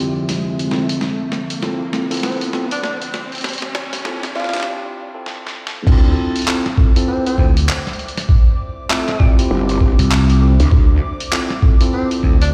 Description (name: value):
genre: glitch hop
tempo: 99 BPM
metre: 4/4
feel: swing 60% on 16ths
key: D minor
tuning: A4 = 440 Hz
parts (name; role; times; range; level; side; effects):
- dark analog pad; sustained chords; 0.0-12.5 s; D3 to D6; -31 LUFS; equal; chorus, sidechain pumping
- mellow tine electric piano; stabs; 0.0-12.4 s; C4 to D5; -25 LUFS; equal; vintage 12-bit sampler grit, sidechain pumping, low-pass filter, digital delay
- riser; sound effects; 0.0-4.7 s; none; -32 LUFS; equal; none
- boom bap sampler-style drum kit; drums; 0.3-12.5 s; crash cymbal, handclaps, hi-hat, snare drum; -26 LUFS; equal; none
- breathy tenor saxophone; melody; 2.2-12.5 s; A3 to F4; -29 LUFS; equal; vintage 12-bit sampler grit, digital delay
- growl bass; bass; 5.9-11.0 s; G1 to D2; -17 LUFS; equal; chorus, tube saturation
- electronic kick drum; drums; 5.9-12.4 s; none; -15 LUFS; equal; none
- vintage slap bass; bass; 7.4-12.5 s; C2 to D2; -15 LUFS; equal; none
room: light reverb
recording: played on a big sound system in a bare room, stone room reverb, high-pass filter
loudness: -17 LUFS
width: mono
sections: 0.0-5.9 A section; 5.9-12.5 B section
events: build-up 0.0-5.9; drum fill 0.0-4.7, 5.3-5.9; riser 0.0-4.7; filter sweep on tine electric piano 0.0-5.9; filter sweep on analog synth pad 0.0-5.9; filter sweep 0.0-5.9; break 4.7-5.9; drop 5.9-12.5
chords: 0.0 Dm9